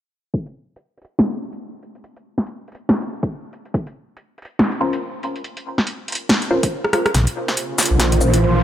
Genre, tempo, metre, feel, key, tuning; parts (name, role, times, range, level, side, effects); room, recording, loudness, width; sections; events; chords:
deep dubstep; 141 BPM; 4/4; swing 59% on 16ths, half-time; Bb minor; A4 = 440 Hz
deep house drum kit; drums; 0.3-8.4 s; hi-hat, rim click, shaker, snare drum; -19 LUFS; equal; overdrive, high-pass filter on hats, studio reverb, high-pass filter on snare, high-pass filter on perc
electronic kick drum; drums; 0.3-0.4, 3.2-3.8, 6.6-6.7 s; -21 LUFS; equal; overdrive, high-pass filter on kick, studio reverb
filtered dub chord stab; stabs; 4.8-8.4 s; Db4 to C5; -24 LUFS; left 1 dB; phaser, dub echo
granular cloud pad; sustained chords; 7.5-8.6 s; Bb3 to C5; -22 LUFS; right 3 dB; built-in reverb
wobble bass; bass; 7.1-8.6 s; Bb1; -16 LUFS; equal; chorus, tube saturation
riser; sound effects; 7.5-8.6 s; -23 LUFS; right 1 dB
light reverb, digital ambience; low-pass filter; -18 LUFS; side -11 dB against mid
0.3-7.1 A section; 7.1-8.6 B section
filter sweep 0.3-7.1; drum fill 6.8-7.1, 7.1-8.6; build-up 7.1-8.6; riser 7.5-8.6
0.3 Bbmadd9